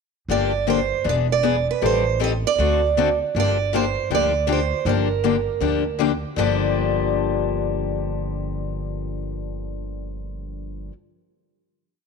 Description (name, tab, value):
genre	acoustic string swing (jazz manouche)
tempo	158 BPM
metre	4/4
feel	swing 62% on 8ths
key	G minor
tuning	A4 = 441 Hz
part	picked steel-string acoustic guitar	melody	0.3-10.9 s	G4 to Eb5	-23 LUFS	right 8 dB	slapback echo
part	picked steel-string acoustic guitar	accompaniment	0.3-10.9 s	G2 to A4	-23 LUFS	left 11 dB	none
part	upright bass	bass	0.3-10.9 s	E1 to D2	-26 LUFS	right 2 dB	none
room	light reverb, small room reverb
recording	1960s-style stereo with parts hard left and right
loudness	-19 LUFS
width	side -5 dB against mid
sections	0.3-6.4 A section; 6.4-9.4 final chord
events	none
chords	0.3 Gm7; 1.1 E7; 1.8 Am7b5; 2.6 D7; 3.3 Gm7